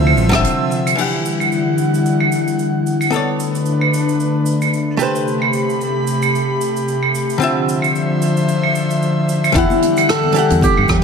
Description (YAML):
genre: sunset chillout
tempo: 112 BPM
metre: 4/4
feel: swing 57% on 16ths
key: E minor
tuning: A4 = 444 Hz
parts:
  - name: flamenco guitar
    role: melody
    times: 0.0-0.4, 9.6-11.0 s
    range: E4 to A4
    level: -17 LUFS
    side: left 2 dB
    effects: digital delay
  - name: archtop guitar, miked and amplified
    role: accompaniment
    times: 0.0-11.0 s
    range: D3 to F#5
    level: -21 LUFS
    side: equal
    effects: auto-pan, ping-pong delay
  - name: airy breathy pad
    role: sustained chords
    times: 0.0-11.0 s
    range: C3 to B5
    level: -17 LUFS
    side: left 2 dB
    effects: chorus
  - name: fretless electric bass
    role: bass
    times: 0.0-0.4, 9.6-11.0 s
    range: A1 to G2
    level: -16 LUFS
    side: equal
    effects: tube saturation
  - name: soft brush drum kit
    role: drums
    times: 0.1-11.0 s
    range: cabasa, claves, crash cymbal, hi-hat, rim click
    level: -21 LUFS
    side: right 4 dB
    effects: none
  - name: congas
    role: percussion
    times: 0.2-0.3, 9.7-11.0 s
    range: none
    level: -25 LUFS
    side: right 2 dB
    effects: none
  - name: electronic kick drum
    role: drums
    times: 0.3-0.4, 9.6-11.0 s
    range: none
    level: -19 LUFS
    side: equal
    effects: none
room: wet lush hall reverb, RT60 1.5 s, small room ambience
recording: none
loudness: -14 LUFS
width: side -6 dB against mid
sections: 1.0-9.6 A section; 9.6-11.0 B section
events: break 0.4-1.0; filter sweep on analog synth pad 1.0-9.6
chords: 0.0 Dm9; 1.0 Em9; 3.1 Bm9; 5.0 Am9; 7.4 Dm9; 9.6 Em9